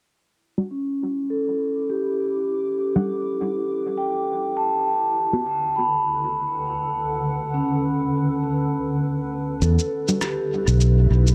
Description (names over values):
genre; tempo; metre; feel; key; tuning
ambient dub; 101 BPM; 4/4; swing 56% on 16ths; E dorian; A4 = 440 Hz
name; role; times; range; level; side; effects
granular cloud pad; sustained chords; 0.9-11.3 s; D3 to D6; -32 LUFS; equal; built-in reverb
filtered dub chord stab; stabs; 0.6-5.4, 10.1-10.2 s; G3 to F#5; -28 LUFS; equal; chorus, dub echo
vibraphone with soft mallets; arpeggios; 0.7-11.3 s; C#4 to B5; -26 LUFS; equal; low-pass filter, tape echo
fingered electric bass; bass; 9.6-11.3 s; B1 to E2; -18 LUFS; equal; none
electronic shaker and rim click; drums; 9.6-11.3 s; none; -32 LUFS; equal; studio reverb, dub echo
room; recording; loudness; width
light reverb; dark, warm production; -23 LUFS; mono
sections
0.1-11.3 A section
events
fade-in on ambient pad 0.1-11.3; filter sweep on vibraphone 0.1-11.3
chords
0.1 Em7; 4.9 D6; 9.6 Em7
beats
| 0.12 0.71 1.30 1.90 | 2.49 3.09 3.68 4.28 | 4.87 5.46 6.06 6.65 | 7.25 7.84 8.43 9.03 | 9.62 10.21 10.81